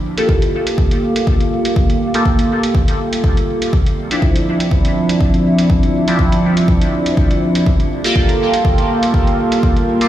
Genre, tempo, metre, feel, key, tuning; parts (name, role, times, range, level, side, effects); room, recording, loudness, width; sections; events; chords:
dub techno; 122 BPM; 4/4; swing 54% on 16ths; G minor; A4 = 440 Hz
dark analog pad; sustained chords; 0.0-10.1 s; F3 to F5; -20 LUFS; equal; chorus, sidechain pumping
metallic inharmonic drone; texture; 0.0-10.1 s; G3 to G4; -28 LUFS; right 2 dB; chorus, built-in reverb, phaser, sidechain pumping
resonant sweep polysynth; stabs; 0.2-10.1 s; F3 to A4; -17 LUFS; right 1 dB; chorus, phaser, sidechain pumping, dub echo
electronic hi-hat; drums; 0.2-10.1 s; -27 LUFS; right 2 dB
electronic kick drum; drums; 0.3-9.7 s; -16 LUFS; equal; overdrive
light reverb, digital ambience; played on a big sound system in a bare room, stone room reverb; -12 LUFS; side -12 dB against mid
0.0-10.1 A section
0.0 Gm9; 3.7 Dm9; 7.7 Gm9